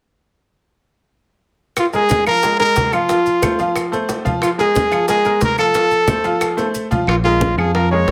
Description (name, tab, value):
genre	latin, salsa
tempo	181 BPM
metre	4/4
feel	straight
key	unclear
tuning	A4 = 439 Hz
part	warm trumpet	melody	1.8-8.1 s	F4 to Db5	-18 LUFS	equal	none
part	bongos	percussion	1.8-8.1 s	none	-30 LUFS	equal	none
part	claves	percussion	1.8-7.7 s	none	-28 LUFS	equal	none
part	congas	percussion	1.8-8.1 s	none	-25 LUFS	equal	none
part	maracas	percussion	1.8-7.1 s	none	-35 LUFS	equal	none
part	bright upright piano	accompaniment	1.9-8.1 s	F3 to F5	-23 LUFS	equal	none
part	fingered electric bass	bass	7.1-8.1 s	Bb1 to F2	-20 LUFS	equal	none
room	moderate studio reverb, RT60 0.5 s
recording	none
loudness	-16 LUFS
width	mono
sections	1.8-7.1 A section; 7.1-8.1 B section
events	drum fill 6.6-7.1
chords	1.8 Bb5; 3.1 F; 4.4 Bb5; 5.8 F; 7.1 Bb7(no3)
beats	| 1.77 2.10 2.43 2.76 | 3.10 3.43 3.76 4.09 | 4.42 4.76 5.09 5.42 | 5.75 6.09 6.42 6.75 | 7.08 7.41 7.75 8.08